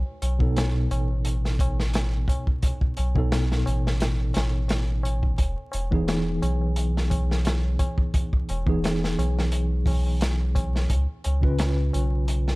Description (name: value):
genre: trip hop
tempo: 87 BPM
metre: 4/4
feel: swing 54% on 16ths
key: unclear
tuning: A4 = 441 Hz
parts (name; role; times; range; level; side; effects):
- soft dub sub bass; bass; 0.0-12.6 s; E1 to C#2; -24 LUFS; equal; none
- tabla; percussion; 0.1-12.6 s; none; -39 LUFS; left 1 dB; none
- crunchy breakbeat drum kit; drums; 0.2-12.6 s; hi-hat, kick drum, snare drum; -26 LUFS; equal; none
- mellow tine electric piano; accompaniment; 0.4-12.6 s; B2 to B4; -28 LUFS; equal; medium stereo tremolo, tape echo
room: studio reverb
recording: vinyl crackle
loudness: -22 LUFS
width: side -22 dB against mid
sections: 0.0-12.6 A section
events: none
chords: 0.0 B7; 5.4 Emaj7; 10.9 C#7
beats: 0.56 1.25 1.94 | 2.63 3.32 4.01 4.70 | 5.39 6.08 6.76 7.46 | 8.14 8.83 9.52 10.21 | 10.90 11.59 12.28